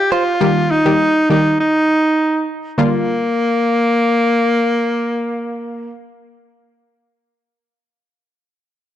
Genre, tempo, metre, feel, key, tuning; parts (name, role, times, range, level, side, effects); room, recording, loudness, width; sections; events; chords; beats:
afrobeats; 101 BPM; 4/4; straight; Bb major; A4 = 440 Hz
breathy alto saxophone; melody; 0.0-5.9 s; Bb3 to G4; -15 LUFS; equal; tape echo
analog pluck; accompaniment; 0.4-6.6 s; D3 to G4; -16 LUFS; left 1 dB; chorus
light reverb; blown-out, overdriven recording, overdrive; -13 LUFS; side -11 dB against mid
0.0-2.8 A section; 2.8-5.2 B section
0.4 Eb; 2.8 Bb6
| 0.41 1.00 1.60 2.19 | 2.79 3.38 3.98 4.57